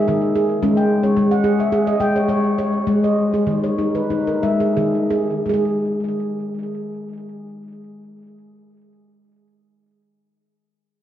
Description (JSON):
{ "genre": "world meditative, meditative tuned percussion", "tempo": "83-110 BPM", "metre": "4/4", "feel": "swing 54% on 16ths", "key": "unclear", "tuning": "A4 = 438 Hz", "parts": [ { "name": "handpan", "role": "solo", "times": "0.0-9.2 s", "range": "D#3 to G5", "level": "-17 LUFS", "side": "equal", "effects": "tape echo" } ], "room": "wet recital hall reverb, RT60 1.6 s, small room ambience", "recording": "worn, warbling old tape, cassette tape, warbly pitch drift", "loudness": "-17 LUFS", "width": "side -11 dB against mid", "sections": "0.0-5.5 A section; 5.5-11.0 B section", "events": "slowing down 0.6-5.5", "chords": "0.0 G#5; 0.6 C#m/G#; 2.9 G#m; 5.5 N.C.", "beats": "0.07 | 0.62 1.17 1.72 2.29 | 2.87 3.47 4.10 4.76 | 5.47 6.19 6.91 7.63 | 8.36 9.08" }